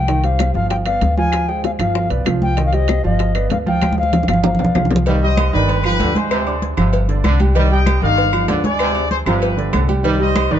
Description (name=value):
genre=latin, salsa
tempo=193 BPM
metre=4/4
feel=straight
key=C harmonic minor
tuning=A4 = 440 Hz
part: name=bright reedy baroque flute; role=melody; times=0.0-4.9 s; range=Eb5 to Ab5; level=-22 LUFS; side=left 4 dB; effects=none
part: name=warm concert grand piano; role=accompaniment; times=0.0-10.6 s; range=D3 to D6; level=-21 LUFS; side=right 4 dB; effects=none
part: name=upright bass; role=bass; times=0.0-10.6 s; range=G1 to D2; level=-18 LUFS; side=equal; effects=none
part: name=bongos and cowbell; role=percussion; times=0.1-10.5 s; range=none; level=-26 LUFS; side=left 4 dB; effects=none
part: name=congas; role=percussion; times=0.1-10.5 s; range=none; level=-22 LUFS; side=equal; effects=none
part: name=timbales and agogo bells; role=percussion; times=0.1-10.5 s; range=none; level=-28 LUFS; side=right 8 dB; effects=none
part: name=claves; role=percussion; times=0.4-10.5 s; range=none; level=-32 LUFS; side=left 8 dB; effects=none
part: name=brilliant trombone section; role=second line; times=5.1-10.6 s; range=C3 to G3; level=-23 LUFS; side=equal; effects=none
part: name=warm trumpet section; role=melody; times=5.2-10.6 s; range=G4 to G5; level=-21 LUFS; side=left 2 dB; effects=none
room=light reverb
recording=dark, warm production, nothing above 7.8 kHz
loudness=-14 LUFS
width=side -10 dB against mid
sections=0.0-5.1 A section; 5.1-10.6 B section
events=drum fill 3.8-5.1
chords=0.1 Cm; 0.7 G7; 1.3 Dm7b5; 1.9 G7; 2.6 Cm; 3.2 G7; 3.8 Dm7b5; 4.4 G7; 5.1 Cm; 5.7 G7; 6.3 Dm7b5; 6.9 G5; 7.6 Cm; 8.2 G7; 8.8 Dm7b5; 9.4 G7; 10.0 Cm